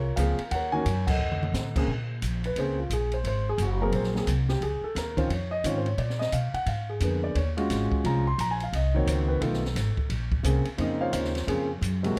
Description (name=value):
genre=jazz piano trio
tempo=175 BPM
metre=4/4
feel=swing 63% on 8ths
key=Bb minor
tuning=A4 = 442 Hz
part: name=warm grand piano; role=melody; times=0.0-12.2 s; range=C3 to C6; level=-31 LUFS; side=equal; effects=plate reverb
part: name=upright bass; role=bass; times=0.0-12.2 s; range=Gb1 to Cb3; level=-30 LUFS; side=equal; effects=none
part: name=open jazz drum kit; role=drums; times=0.2-12.2 s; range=crash cymbal, hi-hat, kick drum, ride cymbal, snare drum, toms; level=-36 LUFS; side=equal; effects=none
room=light reverb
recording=none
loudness=-27 LUFS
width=mono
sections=0.0-1.9 A section; 1.9-12.2 B section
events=band accent 1.0; drum fill 1.2-1.5; grand piano solo 1.9-12.2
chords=0.0 Gbmaj9#11 (rootless); 0.5 Ebm7; 1.2 F7b9; 1.9 Bbm9; 3.2 Ab9; 4.6 Dbmaj9; 6.0 Bb7b9; 7.4 Ebm11; 8.7 Cm7b5; 9.4 B7#11; 10.1 Bbm9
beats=0.17 | 0.51 0.86 1.20 1.54 | 1.88 2.22 2.57 2.91 | 3.25 3.59 3.93 4.28 | 4.62 4.96 5.30 5.64 | 5.99 6.33 6.67 7.01 | 7.36 7.70 8.04 8.38 | 8.72 9.07 9.41 9.75 | 10.09 10.44 10.78 11.12 | 11.46 11.81 12.15